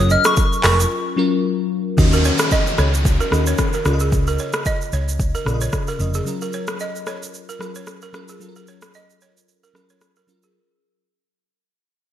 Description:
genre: afrobeats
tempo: 112 BPM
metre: 4/4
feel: swing 55% on 16ths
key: unclear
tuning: A4 = 440 Hz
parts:
  - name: soft struck synth lead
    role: melody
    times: 0.0-1.3 s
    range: Db6 to F6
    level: -20 LUFS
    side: left 2 dB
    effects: chorus, digital delay
  - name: bell-like FM electric piano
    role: accompaniment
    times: 0.0-10.6 s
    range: Db3 to Eb5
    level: -24 LUFS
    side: left 3 dB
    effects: chorus, phaser
  - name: balafon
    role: riff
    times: 0.0-10.5 s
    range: Ab4 to Eb5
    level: -26 LUFS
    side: right 5 dB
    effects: digital delay
  - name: hollow-body short-scale fingered electric bass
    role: bass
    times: 0.0-6.2 s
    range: F1 to Eb2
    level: -19 LUFS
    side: equal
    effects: none
  - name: afro-pop drum kit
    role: drums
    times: 0.1-10.5 s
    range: handclaps, hi-hat, kick drum, rim click, shaker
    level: -21 LUFS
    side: equal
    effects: gated reverb
  - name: downlifter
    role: sound effects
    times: 2.0-6.3 s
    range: none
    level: -26 LUFS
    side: equal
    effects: none
room: moderate lush hall reverb, RT60 1.7 s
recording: bright 1980s-style digital production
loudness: -16 LUFS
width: side -10 dB against mid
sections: 0.0-2.0 A section; 2.0-10.6 B section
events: break 0.9-2.0, 9.5-10.6; fade-out 2.0-10.6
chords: 0.0 Gbmaj7; 2.0 Ebm7; 3.9 Dbadd9; 6.3 Gbmaj7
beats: 0.37 0.91 1.44 | 1.98 2.52 3.05 3.59 | 4.12 4.66 5.19 5.73 | 6.27 6.80 7.34 7.87 | 8.41 8.94 9.48 10.02

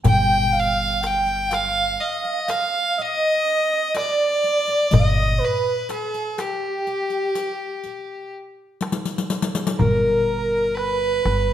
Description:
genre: Arabic maqam ensemble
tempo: 123 BPM (eighths)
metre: 10/8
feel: straight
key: G maqam saba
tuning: A4 = 440 Hz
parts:
  - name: warm velvety synth lead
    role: second line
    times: 0.0-11.5 s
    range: G4 to G5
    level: -23 LUFS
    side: right 2 dB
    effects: chorus
  - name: riq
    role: percussion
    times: 0.0-9.8 s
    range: none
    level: -27 LUFS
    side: left 4 dB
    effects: none
  - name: clear violin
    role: melody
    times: 0.1-11.5 s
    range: G4 to G5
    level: -23 LUFS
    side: left 1 dB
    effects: none
  - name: upright bass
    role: bass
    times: 0.1-11.5 s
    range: G1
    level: -24 LUFS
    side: equal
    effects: none
  - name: darbuka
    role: percussion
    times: 0.1-11.5 s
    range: none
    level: -23 LUFS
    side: left 2 dB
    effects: none
room: moderate recital hall reverb, RT60 1.4 s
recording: none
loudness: -19 LUFS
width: side -11 dB against mid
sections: 0.0-9.8 A section; 9.8-11.5 B section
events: drum fill 8.8-9.8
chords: none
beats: | 0.05 0.54 1.03 1.51 2.00 2.49 2.98 3.46 3.95 4.44 | 4.92 5.41 5.90 6.38 6.87 7.36 7.84 8.33 8.82 9.31 | 9.79 10.28 10.77 11.25

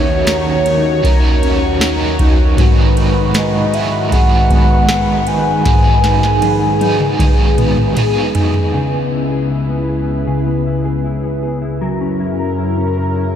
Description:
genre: dream pop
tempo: 78 BPM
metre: 4/4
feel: straight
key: C# dorian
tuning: A4 = 439 Hz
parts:
  - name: hollow clarinet-like synth lead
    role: melody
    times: 0.0-8.0 s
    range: C#5 to G#5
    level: -20 LUFS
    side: equal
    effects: chorus, analog delay
  - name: overdriven semi-hollow guitar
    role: accompaniment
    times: 0.0-9.2 s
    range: G#2 to A#4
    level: -20 LUFS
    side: right 4 dB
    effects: tremolo, lush chorus
  - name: phased analog pad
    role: sustained chords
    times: 0.0-13.4 s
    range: C#2 to C#5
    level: -18 LUFS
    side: equal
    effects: phaser, chorus
  - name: mellow electric guitar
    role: arpeggios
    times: 0.0-13.4 s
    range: G#2 to A#4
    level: -19 LUFS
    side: left 3 dB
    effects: ensemble chorus, analog delay
  - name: booming analog drum machine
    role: drums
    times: 0.3-8.7 s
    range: kick drum, ride cymbal, snare drum, tambourine, toms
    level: -15 LUFS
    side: equal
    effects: none
room: moderate huge ambient reverb, RT60 8.5 s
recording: dreamy mix soaked in reverb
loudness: -12 LUFS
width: side -9 dB against mid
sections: 0.0-8.7 A section; 8.7-13.4 B section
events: drum fill 5.7-8.7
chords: 0.0 D#m7; 2.6 G#m7; 8.7 C#m7; 11.8 F#7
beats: 0.27 1.04 1.81 | 2.58 3.35 4.12 4.89 | 5.66 6.43 7.20 7.96 | 8.73 9.50 10.27 11.04 | 11.81 12.58 13.35

